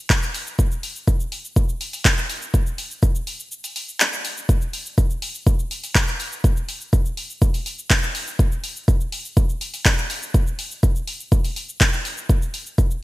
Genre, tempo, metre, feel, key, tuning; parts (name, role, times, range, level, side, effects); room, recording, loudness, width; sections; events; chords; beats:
techno; 123 BPM; 4/4; straight
deep house drum kit; drums; 0.1-13.0 s; handclaps, hi-hat, shaker; -24 LUFS; equal; small room ambience
electronic kick drum; drums; 0.1-12.9 s; -17 LUFS; equal; small room ambience
little or no reverb; bright 1980s-style digital production; -19 LUFS; side -18 dB against mid
0.0-13.0 A section
kick drops out 3.5-4.5
0.10 | 0.59 1.07 1.56 2.05 | 2.54 3.03 3.51 4.00 | 4.49 4.98 5.46 5.95 | 6.44 6.93 7.42 7.90 | 8.39 8.88 9.37 9.86 | 10.34 10.83 11.32 11.81 | 12.29 12.78